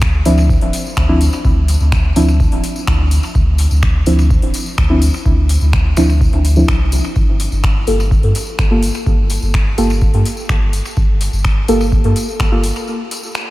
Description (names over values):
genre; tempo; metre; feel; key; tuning
dub techno; 126 BPM; 4/4; straight; D minor; A4 = 440 Hz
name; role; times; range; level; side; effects
pure sine sub bass; bass; 0.0-12.7 s; D1 to G2; -14 LUFS; equal; sidechain pumping
booming analog drum machine; drums; 0.0-13.4 s; finger snaps, hi-hat; -25 LUFS; left 1 dB; dub echo
electronic kick drum; drums; 0.0-12.5 s; none; -16 LUFS; equal; none
tambourine; percussion; 0.0-13.4 s; none; -30 LUFS; left 2 dB; none
deep mellow chord stab; stabs; 0.3-12.6 s; F3 to A4; -19 LUFS; equal; chorus, phaser, sidechain pumping, dub echo
room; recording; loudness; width
light reverb, digital ambience; vinyl crackle; -12 LUFS; side -18 dB against mid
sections
0.0-13.5 A section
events
break 12.9-13.5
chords
0.0 Dm9; 7.2 Gm9